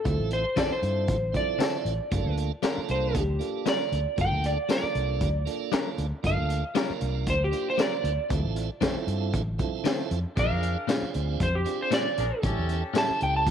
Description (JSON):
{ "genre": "straight-eighth soul blues", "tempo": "116 BPM", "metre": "4/4", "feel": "straight", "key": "unclear", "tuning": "A4 = 437 Hz", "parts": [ { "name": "electric slide guitar", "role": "melody", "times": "0.0-13.5 s", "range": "G4 to A5", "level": "-29 LUFS", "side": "right 1 dB", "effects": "none" }, { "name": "tonewheel organ", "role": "accompaniment", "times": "0.0-13.5 s", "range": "Bb3 to C5", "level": "-34 LUFS", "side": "right 14 dB", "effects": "slow rotary speaker" }, { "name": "vintage muted fingered electric bass", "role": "bass", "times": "0.1-13.5 s", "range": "G1 to G2", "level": "-28 LUFS", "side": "equal", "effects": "none" }, { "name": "crunchy breakbeat drum kit", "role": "drums", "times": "0.1-13.5 s", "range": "hi-hat, kick drum, snare drum, tambourine", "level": "-30 LUFS", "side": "equal", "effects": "none" }, { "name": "direct-recorded clean electric guitar", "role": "stabs", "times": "0.6-13.1 s", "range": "A2 to Bb4", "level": "-33 LUFS", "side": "left 11 dB", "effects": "none" }, { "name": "bright horn section", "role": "sustained chords", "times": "10.3-13.0 s", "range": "C#4 to Bb4", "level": "-37 LUFS", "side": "left 2 dB", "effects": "none" } ], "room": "light reverb", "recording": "1960s-style stereo with parts hard left and right", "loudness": "-24 LUFS", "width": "side -8 dB against mid", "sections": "0.0-13.5 A section", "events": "electric slide guitar solo 0.0-13.5", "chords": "0.0 Dm7; 2.1 Gm7; 8.3 Dm7; 10.4 Bb7; 12.4 A7", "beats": "| 0.05 0.57 1.08 1.60 | 2.12 2.63 3.15 3.66 | 4.18 4.69 5.21 5.73 | 6.24 6.76 7.27 7.79 | 8.30 8.82 9.34 9.85 | 10.37 10.88 11.40 11.92 | 12.43 12.95 13.46" }